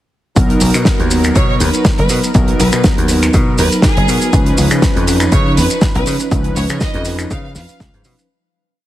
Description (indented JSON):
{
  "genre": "nu-disco, nu disco",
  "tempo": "121 BPM",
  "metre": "4/4",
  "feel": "swing 54% on 16ths",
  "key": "B lydian",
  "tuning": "A4 = 439 Hz",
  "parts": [
    { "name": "mellow synth brass", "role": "accompaniment", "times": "0.3-8.3 s", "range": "E#3 to B4", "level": "-17 LUFS", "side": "equal", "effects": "chorus, sidechain pumping" },
    { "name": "dry thumbed slap bass", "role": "bass", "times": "0.4-8.1 s", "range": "F#1 to C#3", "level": "-16 LUFS", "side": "equal", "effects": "none" },
    { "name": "damped 70s drum kit", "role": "drums", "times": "0.4-8.3 s", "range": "finger snaps, hi-hat, shaker, snare drum", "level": "-18 LUFS", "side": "right 1 dB", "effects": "none" },
    { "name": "electronic kick drum", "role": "drums", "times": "0.4-7.9 s", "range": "none", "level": "-15 LUFS", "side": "equal", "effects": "none" },
    { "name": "clear studio violin section", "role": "melody", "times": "1.4-7.9 s", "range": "G#4 to E#5", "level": "-22 LUFS", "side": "right 1 dB", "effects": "ping-pong delay" }
  ],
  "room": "light reverb, small room ambience",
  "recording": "heavily compressed radio sound",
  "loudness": "-11 LUFS",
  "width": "side -14 dB against mid",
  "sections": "0.4-8.3 drop",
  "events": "drop 0.4-8.3; fade-out 5.7-8.3",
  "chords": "0.4 Bmaj7; 4.3 C#9"
}